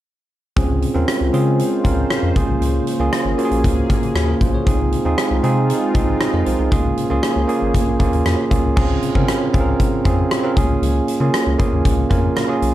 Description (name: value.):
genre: 1980s-style pop.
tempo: 117 BPM.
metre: 4/4.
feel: straight.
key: Db major.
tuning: A4 = 439 Hz.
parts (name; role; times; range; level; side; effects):
barky tine electric piano; accompaniment; 0.6-12.7 s; Bb3 to Ab5; -19 LUFS; right 2 dB; none.
sweeping resonant pad; sustained chords; 0.6-8.8 s; Db3 to C5; -26 LUFS; left 4 dB; chorus.
rubbery square bass; bass; 0.6-12.7 s; Ab1 to Db3; -20 LUFS; left 1 dB; none.
huge arena drum kit; drums; 0.6-12.7 s; crash cymbal, hi-hat, kick drum, rim click; -20 LUFS; left 1 dB; gated reverb.
room: light reverb.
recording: none.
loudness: -15 LUFS.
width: side -13 dB against mid.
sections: 0.6-8.8 A section; 8.8-12.7 B section.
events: tine electric piano fill 3.6-4.7, 11.8-12.7.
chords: 0.6 Dbmaj7; 2.4 Bbm7; 4.7 Fm7/C; 6.7 Bbm7; 8.8 Dbmaj7; 10.6 Bbm7/Db.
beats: | 0.57 1.08 1.59 2.10 | 2.62 3.13 3.64 4.16 | 4.67 5.18 5.69 6.21 | 6.72 7.23 7.75 8.26 | 8.77 9.28 9.80 10.31 | 10.82 11.34 11.85 12.36.